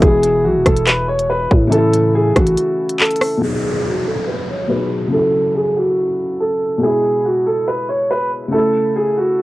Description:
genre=hip hop, drill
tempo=141 BPM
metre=4/4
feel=half-time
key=G# phrygian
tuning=A4 = 440 Hz
part: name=dark concert grand piano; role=melody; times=0.0-9.4 s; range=F#4 to C#5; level=-16 LUFS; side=right 1 dB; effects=low-pass filter, cassette tape
part: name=felt-muted upright piano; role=accompaniment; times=0.0-9.4 s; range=B2 to A4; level=-20 LUFS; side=left 2 dB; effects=low-pass filter, cassette tape
part: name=growling 808-style bass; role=bass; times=0.0-2.6 s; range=E1 to A2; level=-18 LUFS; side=equal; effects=none
part: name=drill drum kit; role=drums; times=0.0-3.3 s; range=handclaps, hi-hat, kick drum, rim click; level=-14 LUFS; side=equal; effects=cassette tape
part: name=downlifter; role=sound effects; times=3.4-6.8 s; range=none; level=-28 LUFS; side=right 1 dB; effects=none
room=little or no reverb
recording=home recording on cassette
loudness=-14 LUFS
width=side -17 dB against mid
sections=0.0-3.4 A section; 3.4-9.4 B section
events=break 2.6-3.4; filter sweep 3.4-9.4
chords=0.0 E; 1.7 A; 3.4 G#m7; 5.1 F#m7; 6.8 E; 8.5 A

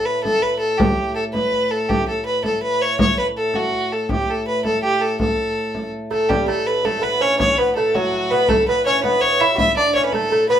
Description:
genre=medieval dance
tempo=109 BPM (dotted quarters)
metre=6/8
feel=straight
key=A mixolydian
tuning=A4 = 440 Hz
part: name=rich fiddle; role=melody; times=0.0-10.6 s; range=F#4 to E5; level=-18 LUFS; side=equal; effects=none
part: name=pedal harmonium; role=drone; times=0.0-10.6 s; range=A2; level=-30 LUFS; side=equal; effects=none
part: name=frame drum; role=percussion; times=0.3-10.3 s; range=none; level=-22 LUFS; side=equal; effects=none
part: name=lute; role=second line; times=6.1-10.6 s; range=F#3 to F#4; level=-20 LUFS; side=right 2 dB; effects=none
room=wet small room reverb, RT60 0.6 s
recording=band playing live in one room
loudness=-16 LUFS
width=side -9 dB against mid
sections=0.0-6.3 A section; 6.3-10.6 A section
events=none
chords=none

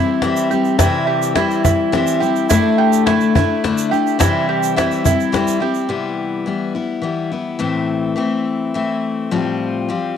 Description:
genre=acoustic folk duo or small band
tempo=106 BPM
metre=3/4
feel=straight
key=C major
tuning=A4 = 440 Hz
part: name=picked steel-string acoustic guitar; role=accompaniment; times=0.0-10.2 s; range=A2 to F4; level=-17 LUFS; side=left 5 dB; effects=none
part: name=mandolin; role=arpeggios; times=0.0-5.9 s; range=E4 to G4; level=-20 LUFS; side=right 12 dB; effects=none
part: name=cajon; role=percussion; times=0.1-5.6 s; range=none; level=-18 LUFS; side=left 2 dB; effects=none
part: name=tube shaker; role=percussion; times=0.4-5.8 s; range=none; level=-29 LUFS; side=right 12 dB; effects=none
room=light reverb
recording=home recording on cassette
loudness=-15 LUFS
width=side -8 dB against mid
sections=0.0-5.9 A section; 5.9-10.2 B section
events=none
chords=0.0 C; 2.5 Dsus2; 4.2 C; 5.9 Cmaj7; 7.6 Am; 9.3 Fadd9/A

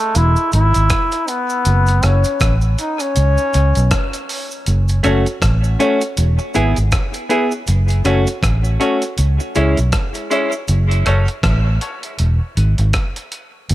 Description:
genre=dub reggae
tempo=80 BPM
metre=4/4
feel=swing 58% on 16ths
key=F# minor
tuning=A4 = 440 Hz
part: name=bright trombone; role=melody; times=0.0-4.3 s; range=A3 to E4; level=-19 LUFS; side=left 1 dB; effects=dub echo
part: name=breakbeat sampler-style drum kit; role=drums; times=0.1-13.7 s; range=hi-hat, kick drum, rim click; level=-21 LUFS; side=equal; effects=dub echo
part: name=vintage muted fingered electric bass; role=bass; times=0.2-13.7 s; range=E1 to C#2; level=-14 LUFS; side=equal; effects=none
part: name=cabasa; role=percussion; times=0.2-10.9 s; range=none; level=-32 LUFS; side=right 4 dB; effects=high-pass filter on perc, dub echo
part: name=semi-hollow electric guitar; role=accompaniment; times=5.0-11.3 s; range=G#3 to G#4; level=-21 LUFS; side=right 4 dB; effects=high-pass filter, dub echo
part: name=warm upright piano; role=stabs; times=5.0-13.5 s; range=B3 to C#5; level=-22 LUFS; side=left 5 dB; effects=high-pass filter, dub echo
room=small room ambience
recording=none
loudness=-14 LUFS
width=side -15 dB against mid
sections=0.0-4.7 A section; 4.7-13.7 B section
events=break 0.0-4.7; filter sweep 7.7-13.7; part muted 10.7-13.7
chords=0.2 E; 1.7 F#m; 3.2 Bsus2; 4.7 F#m; 6.2 E; 7.7 F#m; 9.2 C#m; 10.7 F#m; 12.2 E

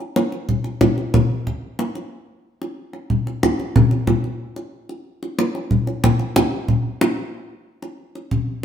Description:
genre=gamelan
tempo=92 BPM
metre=4/4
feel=straight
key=none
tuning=none
part: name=kendang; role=percussion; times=0.2-8.5 s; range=none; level=-18 LUFS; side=equal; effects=none
room=wet stone room reverb, RT60 1.3 s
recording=band playing live in one room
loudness=-18 LUFS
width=side -9 dB against mid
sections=0.0-8.6 A section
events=none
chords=none

